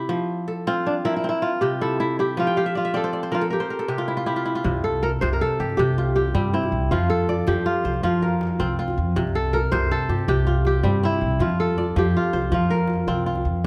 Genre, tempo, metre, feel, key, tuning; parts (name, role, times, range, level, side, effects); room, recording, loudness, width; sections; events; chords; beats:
west african traditional, West African string and xylophone music; 106 BPM (dotted quarters); 12/8; straight; F major; A4 = 440 Hz
kora; melody; 0.0-13.7 s; D4 to C5; -26 LUFS; equal
kora; arpeggios; 0.0-13.7 s; C3 to G5; -27 LUFS; equal
upright bass; bass; 4.6-13.7 s; C2 to G2; -26 LUFS; equal
djembe; percussion; 4.7-13.7 s; -33 LUFS; equal
light reverb; close, detailed microphones; -22 LUFS; mono
0.0-4.7 A section; 4.7-13.7 B section
kora fill 2.5-4.7
0.1 F; 1.2 C; 2.4 F; 3.5 C; 6.9 F; 9.2 C5; 11.4 F
| 0.10 0.67 1.24 1.81 | 2.38 2.95 3.52 4.09 | 4.65 5.22 5.78 6.35 | 6.91 7.47 8.04 8.60 | 9.16 9.72 10.28 10.84 | 11.40 11.96 12.52 13.08 | 13.64